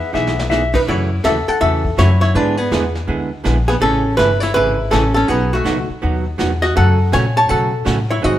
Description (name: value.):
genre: country, western swing.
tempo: 163 BPM.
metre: 4/4.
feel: swing 63% on 8ths.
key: unclear.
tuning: A4 = 440 Hz.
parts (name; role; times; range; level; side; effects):
archtop guitar, miked and amplified; melody; 0.0-8.4 s; A3 to A5; -16 LUFS; equal; none.
clean lap steel guitar; second line; 0.0-0.8 s; E5; -21 LUFS; left 6 dB; none.
archtop guitar, miked and amplified; accompaniment; 0.1-8.4 s; B2 to G#4; -22 LUFS; right 4 dB; none.
upright bass; bass; 0.1-8.4 s; G1 to B2; -18 LUFS; left 1 dB; none.
vintage brush drum kit; drums; 0.1-8.4 s; brushed snare drum, crash cymbal, hi-hat, kick drum, snare drum; -26 LUFS; left 1 dB; none.
room: moderate stone room reverb, RT60 1.2 s.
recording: band playing live in one room.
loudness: -14 LUFS.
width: side -12 dB against mid.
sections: 0.9-8.4 A section.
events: drum fill 0.1-0.5.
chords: 0.0 Emaj7; 0.9 F#m7; 2.3 E7; 3.8 Amaj7; 5.3 B; 6.8 F#m.